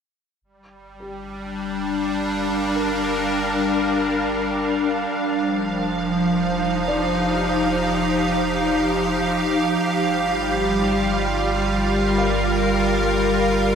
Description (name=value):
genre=ambient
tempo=51 BPM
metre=4/4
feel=straight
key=G minor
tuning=A4 = 440 Hz
part: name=evolving wavetable pad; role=sustained chords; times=1.1-13.8 s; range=F3 to F5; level=-19 LUFS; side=equal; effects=ensemble chorus, built-in reverb, shimmer reverb
part: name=warm sub bass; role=bass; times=0.4-13.8 s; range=F1 to G1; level=-31 LUFS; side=equal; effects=none
part: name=felt-muted upright piano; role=arpeggios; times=1.0-13.8 s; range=G4 to F5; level=-35 LUFS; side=equal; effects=none
part: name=analog drone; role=drone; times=10.6-13.8 s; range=G3 to G4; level=-27 LUFS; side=equal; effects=chorus
room=wet huge ambient reverb, RT60 8.1 s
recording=none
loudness=-19 LUFS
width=side -7 dB against mid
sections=0.4-13.8 A section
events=fade-in on sub bass 0.4-13.8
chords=0.4 Gm7; 5.1 Fsus2; 9.8 Gm7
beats=| 0.41 1.59 2.77 3.94 | 5.12 6.30 7.47 8.65 | 9.83 11.00 12.18 13.36